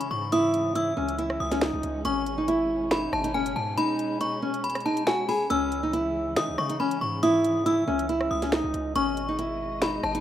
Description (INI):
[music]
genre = hip hop, drill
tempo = 139 BPM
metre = 4/4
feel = half-time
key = C# minor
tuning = A4 = 440 Hz
[part]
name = nylon-string guitar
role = melody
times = 0.0-10.2 s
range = C#4 to G#4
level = -26 LUFS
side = equal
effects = none
[part]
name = metallic FM bell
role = second line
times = 0.0-10.2 s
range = G#5 to E6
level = -30 LUFS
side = left 3 dB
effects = chorus, tape echo
[part]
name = warm symphonic string section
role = sustained chords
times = 0.0-10.2 s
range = B2 to D#5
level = -37 LUFS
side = equal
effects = none
[part]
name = drill drum kit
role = drums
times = 0.0-10.2 s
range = finger snaps, hi-hat, rim click, snare drum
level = -30 LUFS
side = right 1 dB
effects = none
[part]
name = distorted 808-style bass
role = bass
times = 0.1-10.2 s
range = F#1 to E3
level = -35 LUFS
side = right 1 dB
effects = distortion
[sound]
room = digital ambience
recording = rough home demo mix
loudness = -24 LUFS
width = side -11 dB against mid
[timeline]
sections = 0.0-10.2 A section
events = kick muted 3.8-5.5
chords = 0.0 C#madd9; 2.0 G#m; 5.5 C#madd9; 9.0 G#m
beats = | 0.32 0.75 1.19 1.62 | 2.05 2.48 2.91 3.34 | 3.78 4.21 4.64 5.07 | 5.50 5.93 6.37 6.80 | 7.23 7.66 8.09 8.52 | 8.96 9.39 9.82